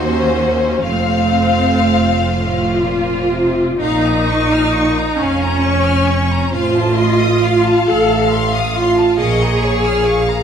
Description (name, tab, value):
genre	classical, slow romantic movement for string orchestra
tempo	38-47 BPM (dotted quarters)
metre	6/8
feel	rubato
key	Bb minor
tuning	A4 = 440 Hz
part	rich chamber violin section	melody	0.0-10.4 s	C5 to F5	-20 LUFS	left 5 dB	none
part	clear chamber violin section	second line	0.0-10.4 s	F4 to F6	-23 LUFS	left 2 dB	none
part	rich chamber viola section	accompaniment	0.0-10.4 s	A3 to A4	-16 LUFS	right 1 dB	none
part	rich chamber double bass section	bass	0.0-10.3 s	F1 to Eb2	-21 LUFS	right 2 dB	none
part	rich studio cello section	bass	0.0-10.3 s	Eb2 to C3	-22 LUFS	right 3 dB	none
room	moderate recital hall reverb, RT60 1.4 s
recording	none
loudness	-12 LUFS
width	side -8 dB against mid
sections	0.0-3.8 A section; 3.8-10.4 A section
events	none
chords	0.0 Cm7b5/Eb; 0.9 F; 3.8 Bbm; 6.5 F7/A; 9.2 Bbm